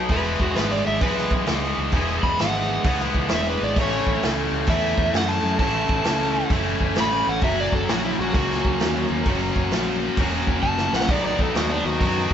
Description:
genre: blues rock power trio and southern rock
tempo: 131 BPM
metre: 4/4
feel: swing 66% on 8ths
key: unclear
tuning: A4 = 438 Hz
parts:
  - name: distorted electric guitar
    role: riff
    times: 0.0-12.3 s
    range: A2 to F#4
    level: -23 LUFS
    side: equal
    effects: overdrive
  - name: growling picked electric bass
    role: bass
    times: 0.0-12.3 s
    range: E1 to F#2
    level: -28 LUFS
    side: equal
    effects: overdrive
  - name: overdriven slide guitar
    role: melody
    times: 0.1-12.3 s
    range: D4 to B5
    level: -25 LUFS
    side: equal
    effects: none
  - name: vintage drum kit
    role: drums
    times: 0.1-12.3 s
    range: hi-hat, kick drum, snare drum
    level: -25 LUFS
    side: equal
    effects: none
room: moderate stone room reverb, RT60 1.3 s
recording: band playing live in one room, nothing above 7.7 kHz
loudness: -19 LUFS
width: side -9 dB against mid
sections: 0.0-12.3 A section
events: electric slide guitar solo 0.0-12.3; drum fill 10.6-11.1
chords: 0.1 E; 3.8 A; 7.4 F#; 11.1 B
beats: | 0.10 0.56 1.02 1.48 | 1.94 2.39 2.85 3.31 | 3.77 4.22 4.68 5.14 | 5.60 6.05 6.51 6.97 | 7.42 7.88 8.34 8.80 | 9.26 9.71 10.17 10.63 | 11.09 11.55 12.01

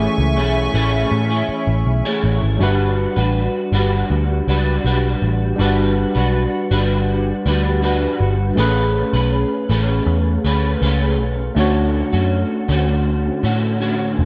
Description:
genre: indie pop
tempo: 80 BPM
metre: 4/4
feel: straight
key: unclear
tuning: A4 = 440 Hz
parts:
  - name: barky tine electric piano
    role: accompaniment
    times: 0.0-14.2 s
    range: E3 to C#5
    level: -25 LUFS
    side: equal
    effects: none
  - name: electric guitar through a small old amp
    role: accompaniment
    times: 0.0-14.2 s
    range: D3 to B4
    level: -24 LUFS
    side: equal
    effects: ensemble chorus, warbly pitch drift
  - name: hollow soft pad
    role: sustained chords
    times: 0.0-2.6 s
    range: A3 to C#6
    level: -26 LUFS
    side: equal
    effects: chorus, plate reverb
  - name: vintage muted picked electric bass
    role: bass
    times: 0.0-14.2 s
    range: E1 to A2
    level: -20 LUFS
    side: equal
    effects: none
room: light reverb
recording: none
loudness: -18 LUFS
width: mono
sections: 0.0-2.6 A section; 2.6-14.2 B section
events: none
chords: 0.0 Amaj7; 2.6 Gmaj7; 8.6 Amaj9; 11.6 Dmaj7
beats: 0.37 1.12 1.86 | 2.61 3.35 4.10 4.85 | 5.59 6.34 7.09 7.83 | 8.58 9.32 10.07 10.82 | 11.57 12.31 13.06 13.81

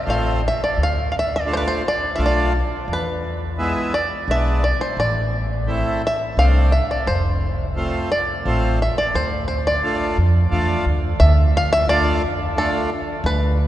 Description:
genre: klezmer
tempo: 86 BPM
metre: 3/4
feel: straight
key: D dorian sharp4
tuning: A4 = 442 Hz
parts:
  - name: bluegrass banjo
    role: melody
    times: 0.0-13.7 s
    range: A4 to F5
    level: -22 LUFS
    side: equal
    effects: none
  - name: accordion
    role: accompaniment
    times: 0.1-12.9 s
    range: G#3 to F4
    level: -24 LUFS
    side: equal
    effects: none
  - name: upright bass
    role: bass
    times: 0.1-13.7 s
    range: F1 to F2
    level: -20 LUFS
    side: equal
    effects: none
room: wet cathedral reverb, RT60 6.8 s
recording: recorded in a church or concert hall, nothing above 10.4 kHz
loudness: -17 LUFS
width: side -13 dB against mid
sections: 0.0-11.2 A section; 11.2-13.7 B section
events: speeding up 0.0-13.7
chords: 0.0 F; 0.8 Dm; 2.9 E; 5.0 Am; 7.1 F; 9.1 Dm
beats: 0.06 | 0.77 1.48 2.18 | 2.88 3.58 4.28 | 4.98 5.67 6.37 | 7.07 7.76 8.45 | 9.14 9.83 10.51 | 11.20 11.88 12.56 | 13.24

